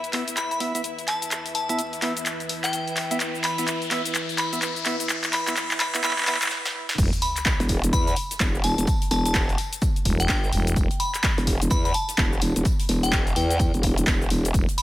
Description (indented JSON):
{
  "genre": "bass house",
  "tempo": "127 BPM",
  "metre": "4/4",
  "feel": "swing 61% on 16ths",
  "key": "unclear",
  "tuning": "A4 = 439 Hz",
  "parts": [
    { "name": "dark analog pad", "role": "sustained chords", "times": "0.0-14.8 s", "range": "E3 to B4", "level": "-35 LUFS", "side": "equal", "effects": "chorus, sidechain pumping" },
    { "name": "house drum kit", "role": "drums", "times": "0.0-14.8 s", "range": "crash cymbal, handclaps, hi-hat, shaker, snare drum", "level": "-26 LUFS", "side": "left 1 dB", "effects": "high-pass filter on hats, high-pass filter on snare, high-pass filter on perc, high-pass filter on cymbals" },
    { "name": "riser and sub drop", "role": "sound effects", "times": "1.5-8.9 s", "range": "none", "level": "-34 LUFS", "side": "left 1 dB", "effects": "none" },
    { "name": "warm chamber string section", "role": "texture", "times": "0.0-6.5 s", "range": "E4 to E5", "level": "-36 LUFS", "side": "left 2 dB", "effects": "sidechain pumping" },
    { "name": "percussive organ stab", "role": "stabs", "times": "0.1-6.4 s", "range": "B3 to E5", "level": "-32 LUFS", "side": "right 2 dB", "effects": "chorus, cassette tape, sidechain pumping, digital delay" },
    { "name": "glassy synth bell", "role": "melody", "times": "0.4-14.8 s", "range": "G5 to B5", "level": "-29 LUFS", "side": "left 1 dB", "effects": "chorus, digital delay" },
    { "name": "growling FM bass", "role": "bass", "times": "7.0-7.1, 10.1-10.9, 14.5-14.7 s", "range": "E1", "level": "-23 LUFS", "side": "equal", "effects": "tube saturation, sidechain pumping" },
    { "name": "electronic kick drum", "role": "drums", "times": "7.0-14.7 s", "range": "none", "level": "-24 LUFS", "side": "equal", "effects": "overdrive" },
    { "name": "swinging big-band drum kit", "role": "drums", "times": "7.0-14.8 s", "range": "hi-hat, snare drum, tambourine", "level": "-38 LUFS", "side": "right 1 dB", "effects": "none" },
    { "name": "growl bass", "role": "bass", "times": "7.6-14.5 s", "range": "E1 to E2", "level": "-24 LUFS", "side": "equal", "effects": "chorus, tube saturation, sidechain pumping" }
  ],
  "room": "light reverb, digital ambience",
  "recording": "high-pass filter",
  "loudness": "-21 LUFS",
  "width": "side -15 dB against mid",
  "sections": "0.0-7.0 A section; 7.0-14.8 B section",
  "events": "build-up 0.0-7.0; drum fill 0.0-6.5, 6.5-7.0; riser 1.5-6.5; break 6.5-7.0; drop 7.0-14.8; impact 7.0-8.9",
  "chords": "0.0 E5"
}